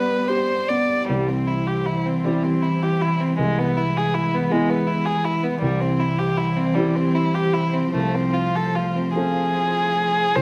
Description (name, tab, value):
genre	neoclassical piano and strings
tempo	49-54 BPM (dotted quarters)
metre	6/8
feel	rubato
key	C major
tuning	A4 = 440 Hz
part	warm violin	melody	0.0-10.4 s	G3 to D5	-25 LUFS	equal	slapback echo
part	dark cello	second line	0.0-10.1 s	E3 to B3	-27 LUFS	equal	none
part	dark grand piano	accompaniment	0.0-10.4 s	C2 to D5	-28 LUFS	equal	none
part	dark chamber string section	sustained chords	0.0-10.4 s	G3 to D5	-35 LUFS	equal	none
room	moderate studio reverb, RT60 0.6 s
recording	close, detailed microphones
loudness	-21 LUFS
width	mono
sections	0.0-1.1 A section; 1.1-10.4 B section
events	none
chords	0.0 G; 1.1 C; 3.4 E/C; 5.6 C; 7.9 F/C